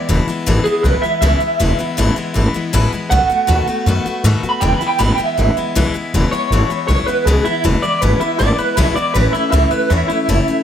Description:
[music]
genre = rockabilly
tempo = 159 BPM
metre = 4/4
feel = straight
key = E major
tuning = A4 = 441 Hz
[part]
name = electric guitar through a small old amp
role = melody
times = 0.0-10.6 s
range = E4 to B5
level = -18 LUFS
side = right 2 dB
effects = tremolo, tape echo
[part]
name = picked steel-string acoustic guitar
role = accompaniment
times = 0.0-10.6 s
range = E2 to F#4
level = -20 LUFS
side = left 4 dB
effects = none
[part]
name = upright bass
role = bass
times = 0.1-10.5 s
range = E1 to G#2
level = -15 LUFS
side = equal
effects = none
[sound]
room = studio reverb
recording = none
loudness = -13 LUFS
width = side -9 dB against mid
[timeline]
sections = 0.0-6.1 A section; 6.1-10.6 B section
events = clean electric guitar solo 6.1-10.6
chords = 0.0 E; 3.1 B7; 4.6 E; 9.1 A

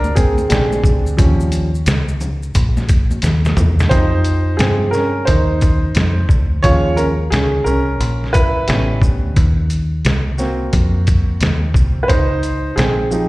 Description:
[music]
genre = hip hop, jazz-hop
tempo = 88 BPM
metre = 4/4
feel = swing 64% on 16ths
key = F minor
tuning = A4 = 441 Hz
[part]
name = warm upright piano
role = accompaniment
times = 0.0-13.3 s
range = F3 to Db5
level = -18 LUFS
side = right 1 dB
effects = plate reverb, slapback echo
[part]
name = deep dub fingered electric bass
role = bass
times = 0.0-13.3 s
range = A1 to G2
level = -17 LUFS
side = equal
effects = none
[part]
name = congas and maracas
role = percussion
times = 0.0-3.9 s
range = none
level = -28 LUFS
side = left 1 dB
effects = none
[part]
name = trip hop sampler-style drum kit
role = drums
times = 0.2-13.3 s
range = hi-hat, kick drum, shaker, snare drum, toms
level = -16 LUFS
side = equal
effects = none
[sound]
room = light reverb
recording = live gig heard through the venue's PA, recital hall reverb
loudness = -13 LUFS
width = side -20 dB against mid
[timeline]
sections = 0.0-3.9 A section; 3.9-13.3 B section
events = upright piano solo 0.0-3.9, 3.9-13.3; drum fill 3.2-3.9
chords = 0.0 Bb13; 1.2 Eb9; 3.9 Fsus2; 6.6 Eb9sus4; 8.7 A9; 9.4 Cm7b5; 12.1 Dbmaj9#11

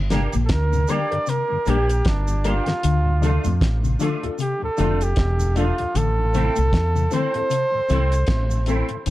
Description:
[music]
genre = roots reggae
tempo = 77 BPM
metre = 4/4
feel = swing 58% on 16ths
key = unclear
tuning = A4 = 445 Hz
[part]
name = deep dub fingered electric bass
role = bass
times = 0.0-9.1 s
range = E1 to F2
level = -20 LUFS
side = equal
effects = none
[part]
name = clean electric guitar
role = accompaniment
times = 0.1-9.0 s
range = A3 to G4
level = -32 LUFS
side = right 2 dB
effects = ensemble chorus, dub echo
[part]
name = mellow tonewheel organ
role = accompaniment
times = 0.1-9.0 s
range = D2 to D4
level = -30 LUFS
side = left 2 dB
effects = dub echo
[part]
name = mellow electric guitar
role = arpeggios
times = 0.1-9.1 s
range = A2 to D3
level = -27 LUFS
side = left 6 dB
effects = none
[part]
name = clear upright piano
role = stabs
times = 0.1-9.0 s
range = C4 to Bb4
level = -30 LUFS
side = left 4 dB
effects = none
[part]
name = damped 70s drum kit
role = drums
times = 0.1-9.1 s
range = hi-hat, kick drum, snare drum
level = -24 LUFS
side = equal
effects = none
[part]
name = cabasa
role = percussion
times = 0.1-9.1 s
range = none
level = -40 LUFS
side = right 3 dB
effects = none
[part]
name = warm flugelhorn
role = melody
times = 0.5-9.0 s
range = D4 to D5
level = -24 LUFS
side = right 1 dB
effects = dub echo
[sound]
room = light reverb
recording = dark, warm production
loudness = -18 LUFS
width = side -16 dB against mid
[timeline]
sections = 0.0-9.1 A section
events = flugelhorn solo 0.0-9.1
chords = 0.0 Gm; 2.8 Dm; 5.9 Am

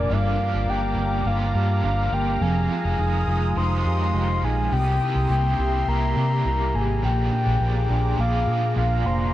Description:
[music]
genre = dream pop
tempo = 104 BPM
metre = 4/4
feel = straight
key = unclear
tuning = A4 = 439 Hz
[part]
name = soft octave-layered synth lead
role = melody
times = 0.0-9.3 s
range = D5 to C6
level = -26 LUFS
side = left 2 dB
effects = chorus, ping-pong delay
[part]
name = cranked stack guitar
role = accompaniment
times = 0.0-9.3 s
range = F2 to Ab4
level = -32 LUFS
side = right 5 dB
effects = overdrive, tremolo, wide subtle chorus
[part]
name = phased analog pad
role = sustained chords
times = 0.0-9.3 s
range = Ab3 to Eb6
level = -31 LUFS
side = equal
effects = phaser, chorus
[part]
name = mellow electric guitar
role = arpeggios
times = 0.0-9.3 s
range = G2 to Ab4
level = -26 LUFS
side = left 1 dB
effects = lush chorus
[part]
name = vintage muted fingered electric bass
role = bass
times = 0.0-9.3 s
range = F1 to C3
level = -24 LUFS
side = equal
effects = none
[sound]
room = moderate concert hall reverb, RT60 1.8 s, digital ambience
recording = worn, warbling old tape, cassette tape, warbly pitch drift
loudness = -20 LUFS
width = side -14 dB against mid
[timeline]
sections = 0.0-9.3 A section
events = none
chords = 0.1 Gm7; 2.4 Fm9; 4.7 C7; 7.0 Bb7

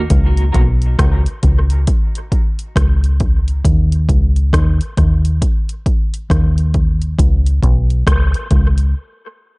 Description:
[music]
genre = dub reggae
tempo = 68 BPM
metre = 4/4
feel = swing 61% on 16ths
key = unclear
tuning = A4 = 438 Hz
[part]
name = deep dub fingered electric bass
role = bass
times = 0.0-8.9 s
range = B1 to Eb2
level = -13 LUFS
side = equal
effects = none
[part]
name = deep house drum kit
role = drums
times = 0.1-8.9 s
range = hi-hat, kick drum, rim click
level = -16 LUFS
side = equal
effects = none
[sound]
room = digital ambience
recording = echo-heavy mix, nothing above 10.6 kHz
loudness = -12 LUFS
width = side -28 dB against mid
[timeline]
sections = 0.0-9.6 A section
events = break 8.9-9.6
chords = none

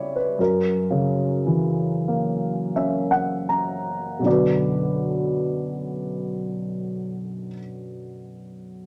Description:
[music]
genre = classical, lyrical solo piano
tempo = 38-61 BPM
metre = 3/4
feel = rubato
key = B harmonic minor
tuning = A4 = 440 Hz
[part]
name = dark baby grand piano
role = solo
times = 0.0-8.9 s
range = B1 to A#5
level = -24 LUFS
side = equal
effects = none
[sound]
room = moderate studio reverb, RT60 0.9 s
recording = none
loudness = -24 LUFS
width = mono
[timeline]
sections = 0.0-4.3 A section; 4.3-8.8 B section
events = slowing down 0.0-4.3; grand piano fill 2.1-4.3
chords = 0.4 F#7; 4.3 Bm

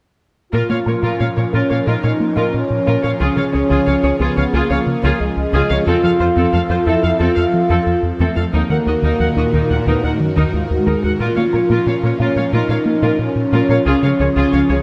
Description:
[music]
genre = cinematic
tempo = 90 BPM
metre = 4/4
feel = straight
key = Bb minor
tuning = A4 = 440 Hz
[part]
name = rich symphonic viola section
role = accompaniment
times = 0.5-14.8 s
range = C4 to Gb5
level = -24 LUFS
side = equal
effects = none
[part]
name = airy breathy pad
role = sustained chords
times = 0.5-14.8 s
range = Eb3 to Bb4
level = -26 LUFS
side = equal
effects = chorus
[part]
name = dark French horn section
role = sustained chords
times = 0.5-14.7 s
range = Ab3 to Ab4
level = -21 LUFS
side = equal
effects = none
[part]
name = resonant blip pluck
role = arpeggios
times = 0.5-14.8 s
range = Db3 to Bb4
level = -29 LUFS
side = equal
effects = none
[part]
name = rubbery square bass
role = riff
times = 0.5-14.8 s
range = Db2 to Bb3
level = -22 LUFS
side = equal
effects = none
[part]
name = warm symphonic cello section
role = bass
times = 0.5-14.8 s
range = Eb2 to Db3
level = -26 LUFS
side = equal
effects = none
[sound]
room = moderate scoring stage reverb, RT60 1.7 s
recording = none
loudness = -16 LUFS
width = mono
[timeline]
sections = 0.5-14.8 A section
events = none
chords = 0.5 Bbm; 3.2 Db; 5.9 F; 8.5 Ebm; 11.2 Bbm; 13.9 Db

